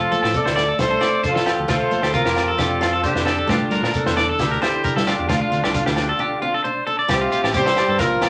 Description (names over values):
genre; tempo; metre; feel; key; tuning
highlife guitar band; 133 BPM; 4/4; straight; F major; A4 = 440 Hz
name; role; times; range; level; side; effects
bright horn section; melody; 0.0-8.3 s; C4 to D5; -25 LUFS; equal; none
trombone with bucket mute; second line; 0.0-8.3 s; C3 to A3; -31 LUFS; equal; none
picked steel-string acoustic guitar; accompaniment; 0.0-8.3 s; A3 to F4; -32 LUFS; equal; none
electric guitar at the edge of break-up; arpeggios; 0.0-8.3 s; F4 to D5; -24 LUFS; equal; none
fingered electric bass; bass; 0.1-8.3 s; A1 to G3; -30 LUFS; equal; none
shekere; percussion; 0.1-8.3 s; none; -33 LUFS; equal; none
compact cocktail drum kit; drums; 0.2-8.3 s; kick drum, snare drum; -28 LUFS; equal; none
agogo bells; percussion; 0.2-8.3 s; none; -32 LUFS; equal; none
room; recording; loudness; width
wet club reverb, RT60 0.6 s; none; -20 LUFS; mono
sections
0.0-7.1 A section; 7.1-8.3 B section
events
break 6.2-7.1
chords
0.0 F6; 3.5 Gm; 5.3 Dm; 7.1 Csus4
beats
0.34 0.79 1.24 | 1.69 2.14 2.59 3.04 | 3.49 3.94 4.39 4.84 | 5.29 5.74 6.19 6.64 | 7.09 7.54 7.99